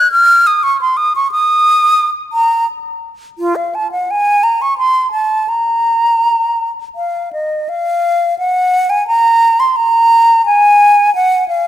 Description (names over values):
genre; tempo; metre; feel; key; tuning
classical, baroque-style fantasia for unaccompanied flute; 85 BPM; 3/4; uneven beats, rubato; Bb minor; A4 = 435 Hz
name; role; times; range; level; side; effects
mellow silver concert flute; solo; 0.0-11.7 s; F4 to Gb6; -10 LUFS; equal; none
room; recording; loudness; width
light reverb; close, detailed microphones; -10 LUFS; side -12 dB against mid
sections
0.0-7.7 A section; 7.7-11.7 B section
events
none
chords
none